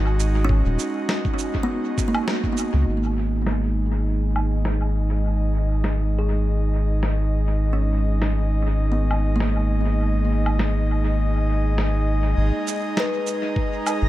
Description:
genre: ambient dub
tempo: 101 BPM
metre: 4/4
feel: swing 55% on 16ths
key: G# minor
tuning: A4 = 439 Hz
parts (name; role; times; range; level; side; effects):
- airy breathy pad; sustained chords; 0.0-14.1 s; G#3 to D#5; -27 LUFS; equal; chorus
- soft dub sub bass; bass; 0.0-14.1 s; D#1 to C#2; -20 LUFS; equal; none
- electronic shaker, snare drum and woodblock; drums; 0.2-14.0 s; none; -30 LUFS; equal; low-pass filter on perc, low-pass filter on snare, low-pass filter on room, dub echo
- kalimba; arpeggios; 0.4-14.1 s; A#3 to B4; -29 LUFS; right 1 dB; low-pass filter, tape echo
- electronic kick drum; drums; 0.5-2.5, 13.6-13.7 s; none; -25 LUFS; equal; none
- backwards swelling texture; texture; 12.4-14.1 s; A#5; -37 LUFS; right 4 dB; built-in reverb
room: digital ambience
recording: echo-heavy mix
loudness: -20 LUFS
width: side -15 dB against mid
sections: 0.0-2.9 A section; 2.9-12.4 B section; 12.4-14.1 A section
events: band accent 2.3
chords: 0.0 G#m7; 2.9 G#5; 12.4 G#m

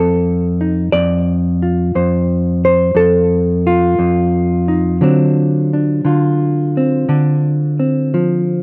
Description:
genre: solo jazz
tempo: 59 BPM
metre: 4/4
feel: swing 68% on 8ths, rubato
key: F mixolydian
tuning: A4 = 443 Hz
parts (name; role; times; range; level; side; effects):
- hollow-body jazz guitar; solo; 0.0-8.6 s; F2 to D5; -12 LUFS; equal; none
room: little or no reverb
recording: recorded outdoors, with no room sound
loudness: -12 LUFS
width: side -30 dB against mid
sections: 0.0-8.6 A section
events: none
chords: 0.0 F7; 5.0 D7#9

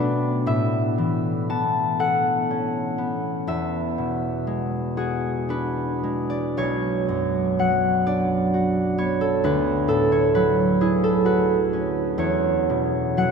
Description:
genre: classical, solo harp piece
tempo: 37-45 BPM (dotted quarters)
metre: 6/8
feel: rubato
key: B dorian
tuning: A4 = 439 Hz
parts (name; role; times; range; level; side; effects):
- concert harp; solo; 0.0-13.3 s; B1 to A5; -20 LUFS; equal; none
room: wet cathedral reverb, RT60 6.6 s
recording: in a vast, echoing space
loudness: -20 LUFS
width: side -5 dB against mid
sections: 0.0-6.5 A section; 6.5-13.3 A section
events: none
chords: 0.5 A69; 3.5 E9; 6.5 Bmadd9; 9.4 Dmaj9; 12.2 E69

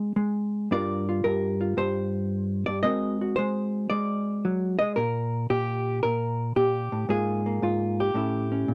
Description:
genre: solo jazz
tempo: 113 BPM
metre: 4/4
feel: swing 69% on 8ths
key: unclear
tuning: A4 = 440 Hz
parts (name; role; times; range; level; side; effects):
- hollow-body jazz guitar; solo; 0.0-8.7 s; G2 to Eb5; -27 LUFS; equal; none
room: light reverb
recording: dry, close 1970s-style studio recording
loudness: -27 LUFS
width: mono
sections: 0.0-8.7 A section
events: none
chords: 0.0 Ab9; 0.7 Gm7; 2.8 Ab9; 5.0 Gm; 7.1 Absus2; 8.1 A7

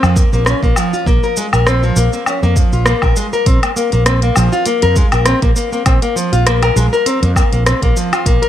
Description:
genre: organic downtempo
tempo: 100 BPM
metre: 4/4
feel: swing 54% on 16ths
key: Bb minor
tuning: A4 = 444 Hz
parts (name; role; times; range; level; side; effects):
- nylon-string guitar; arpeggios; 0.0-8.5 s; F3 to Bb4; -16 LUFS; left 2 dB; digital delay
- fretless electric bass; bass; 0.0-8.4 s; Bb1 to F2; -14 LUFS; right 1 dB; wide subtle chorus, sidechain pumping
- organic electronic drum kit; drums; 0.0-8.5 s; hi-hat, rim click, shaker, woodblock; -18 LUFS; left 1 dB; none
- electronic kick drum; drums; 0.2-8.4 s; none; -14 LUFS; right 1 dB; none
room: light reverb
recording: none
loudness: -11 LUFS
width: side -11 dB against mid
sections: 0.0-8.5 A section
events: none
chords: 0.0 Bb5; 3.5 F5/Bb

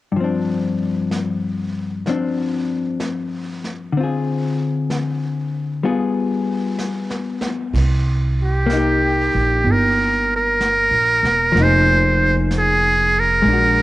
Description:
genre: jazz ballad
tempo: 63 BPM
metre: 4/4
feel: swing 68% on 8ths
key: C minor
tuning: A4 = 441 Hz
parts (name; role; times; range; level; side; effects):
- vintage hollow-body jazz guitar; accompaniment; 0.1-13.8 s; G2 to Ab4; -21 LUFS; left 3 dB; cassette tape
- vintage brush drum kit; drums; 0.2-13.8 s; brushed snare drum, hi-hat, kick drum, ride cymbal, snare drum; -32 LUFS; right 1 dB; none
- upright bass; bass; 7.7-13.8 s; E1 to C2; -19 LUFS; right 1 dB; none
- trumpet with metal mute; melody; 8.4-13.8 s; G4 to C5; -16 LUFS; right 1 dB; cassette tape
room: light reverb, studio reverb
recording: home recording on cassette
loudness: -16 LUFS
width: side -16 dB against mid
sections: 0.1-7.7 A section; 7.7-13.8 B section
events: drum fill 6.8-7.7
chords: 0.1 G7sus4; 3.9 Dm7b5; 5.8 G7b9; 7.7 Cm7; 11.5 Fm7

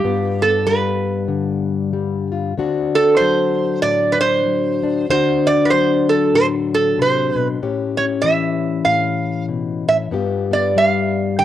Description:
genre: acoustic country blues, solo or duo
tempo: 95 BPM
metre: 4/4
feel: swing 60% on 8ths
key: D mixolydian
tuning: A4 = 440 Hz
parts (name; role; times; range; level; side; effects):
- metal-body resonator slide guitar; melody; 0.0-11.4 s; G4 to G5; -16 LUFS; right 3 dB; cassette tape
- fingerpicked plugged-in old ladder-braced acoustic guitar; accompaniment; 0.0-11.4 s; G2 to G4; -19 LUFS; left 6 dB; cassette tape
room: moderate spring reverb, RT60 1.2 s, small room ambience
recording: home recording on cassette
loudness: -15 LUFS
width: side -11 dB against mid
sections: 0.0-11.4 A section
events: none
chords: 0.0 G7; 2.6 D7; 7.6 A7; 10.1 G7

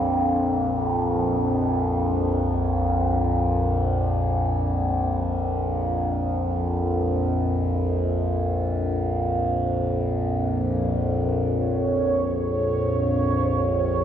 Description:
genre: ambient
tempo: free time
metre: none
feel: none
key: Bb minor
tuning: A4 = 440 Hz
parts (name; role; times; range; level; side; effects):
- overtone-sweeping drone; drone; 0.0-14.0 s; Bb1 to F2; -21 LUFS; equal; chorus, built-in reverb, phaser
- bubbling stepped-filter texture; texture; 11.6-14.0 s; Db5; -25 LUFS; right 4 dB; chorus, built-in reverb
room: wet cathedral reverb, RT60 5.0 s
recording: in a vast, echoing space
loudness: -21 LUFS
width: side -9 dB against mid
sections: 0.0-11.3 A section; 11.3-14.0 B section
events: none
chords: 0.0 Bb5

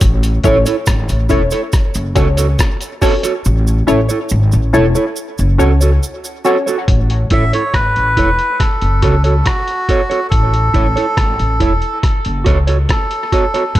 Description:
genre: dub reggae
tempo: 70 BPM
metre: 4/4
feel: straight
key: F# minor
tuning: A4 = 441 Hz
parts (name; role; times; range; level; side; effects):
- upright bass; bass; 0.0-13.8 s; E1 to C#2; -14 LUFS; equal; none
- lo-fi sampler-style drum kit; drums; 0.0-13.8 s; hi-hat, kick drum, rim click; -16 LUFS; equal; none
- cabasa; percussion; 0.0-6.9 s; none; -29 LUFS; right 5 dB; none
- mellow electric guitar; accompaniment; 0.4-13.6 s; E4 to C#5; -19 LUFS; right 4 dB; lush chorus, dub echo
- filtered dub chord stab; stabs; 0.4-6.7 s; C#4 to C#5; -20 LUFS; left 4 dB; phaser, dub echo
- melodica; melody; 7.3-13.8 s; F#4 to E5; -17 LUFS; equal; dub echo
room: light reverb, studio reverb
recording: none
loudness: -12 LUFS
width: side -14 dB against mid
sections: 0.0-6.9 A section; 6.9-13.8 B section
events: break 0.0-6.9; part muted 3.4-6.9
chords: 0.0 A; 1.7 F#m; 3.4 A; 5.2 F#m; 6.9 A; 8.6 F#m; 10.3 A; 12.0 F#m

